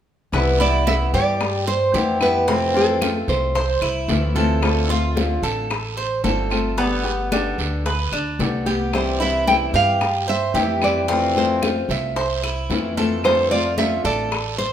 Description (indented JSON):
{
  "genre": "latin, Cuban son and guajira",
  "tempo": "112 BPM",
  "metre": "4/4",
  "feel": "straight",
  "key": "C major",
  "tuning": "A4 = 441 Hz",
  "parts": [
    { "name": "nylon-string guitar", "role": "melody", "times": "0.3-4.3, 8.9-14.7 s", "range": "A4 to G5", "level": "-21 LUFS", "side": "right 1 dB", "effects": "none" },
    { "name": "flamenco guitar", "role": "accompaniment", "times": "0.3-14.4 s", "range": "C3 to G4", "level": "-24 LUFS", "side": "left 3 dB", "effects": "none" },
    { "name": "upright bass", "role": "bass", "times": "0.3-14.7 s", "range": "G1 to G2", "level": "-25 LUFS", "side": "equal", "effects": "none" },
    { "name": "bongos", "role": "percussion", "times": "0.3-14.7 s", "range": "none", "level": "-30 LUFS", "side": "left 5 dB", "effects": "none" },
    { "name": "claves", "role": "percussion", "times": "0.3-14.6 s", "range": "none", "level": "-34 LUFS", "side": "left 4 dB", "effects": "none" },
    { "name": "congas", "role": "percussion", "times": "0.3-14.7 s", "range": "none", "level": "-29 LUFS", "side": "left 2 dB", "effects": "none" },
    { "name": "guiro", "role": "percussion", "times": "0.3-14.7 s", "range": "none", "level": "-31 LUFS", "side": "right 6 dB", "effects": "none" },
    { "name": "Cuban tres", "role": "arpeggios", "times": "0.6-14.7 s", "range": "B3 to C5", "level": "-24 LUFS", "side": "right 2 dB", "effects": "none" }
  ],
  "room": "moderate large studio reverb, RT60 1.2 s",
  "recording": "minimal, uncompressed stereo recording",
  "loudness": "-18 LUFS",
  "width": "side -9 dB against mid",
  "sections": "0.3-14.7 A section",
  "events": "none",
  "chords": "0.3 Cmaj7; 2.5 Fmaj7; 4.6 Dm7; 6.8 G; 8.9 C; 11.1 Fmaj7; 13.2 Dm7"
}